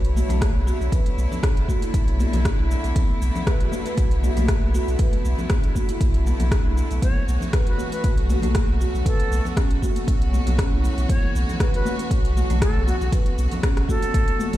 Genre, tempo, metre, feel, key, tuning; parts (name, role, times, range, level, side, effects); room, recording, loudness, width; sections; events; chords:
afro house; 118 BPM; 4/4; swing 54% on 16ths; B minor; A4 = 439 Hz
clear chamber string section; sustained chords; 0.0-14.6 s; D3 to C#5; -32 LUFS; right 1 dB; sidechain pumping
marimba with soft mallets; arpeggios; 0.0-14.5 s; A3 to B4; -30 LUFS; right 1 dB; sidechain pumping, dub echo
warm sub bass; bass; 0.0-14.6 s; F#1 to B1; -22 LUFS; equal; sidechain pumping
afro-pop drum kit; drums; 0.0-14.6 s; hi-hat, rim click, shaker; -32 LUFS; left 1 dB
congas; percussion; 0.2-14.6 s; -30 LUFS; left 3 dB
electronic kick drum; drums; 0.4-14.3 s; -22 LUFS; equal
breathy concert flute; melody; 7.0-14.6 s; F#4 to C#5; -31 LUFS; equal; dub echo
small room ambience; played on a big sound system in a bare room, stone room reverb; -19 LUFS; side -14 dB against mid
0.0-14.6 A section
0.0 Bm11; 7.0 F#m7